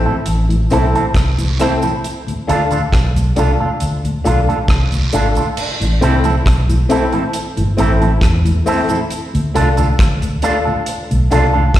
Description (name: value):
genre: roots reggae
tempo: 68 BPM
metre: 4/4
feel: straight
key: A minor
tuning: A4 = 439 Hz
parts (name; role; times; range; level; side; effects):
- warm upright piano; stabs; 0.0-11.5 s; C4 to A4; -20 LUFS; left 4 dB; slapback echo
- vintage muted fingered electric bass; bass; 0.0-11.8 s; G1 to E2; -15 LUFS; equal; none
- electric guitar with an envelope filter; accompaniment; 0.1-11.6 s; C4 to A4; -20 LUFS; right 4 dB; tape echo, slapback echo
- mellow tonewheel organ; accompaniment; 0.1-11.6 s; D2 to F4; -22 LUFS; left 2 dB; chorus vibrato, slow rotary speaker, slapback echo
- damped 70s drum kit; drums; 0.3-11.8 s; crash cymbal, hi-hat, kick drum, rim click; -18 LUFS; equal; none
- cabasa and guiro; percussion; 0.3-11.5 s; none; -32 LUFS; right 4 dB; none
room: light reverb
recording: live gig heard through the venue's PA, recital hall reverb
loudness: -13 LUFS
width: side -13 dB against mid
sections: 0.0-5.6 A section; 5.6-11.8 B section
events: none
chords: 0.0 Am; 2.0 Dm; 5.6 Am; 9.1 Dm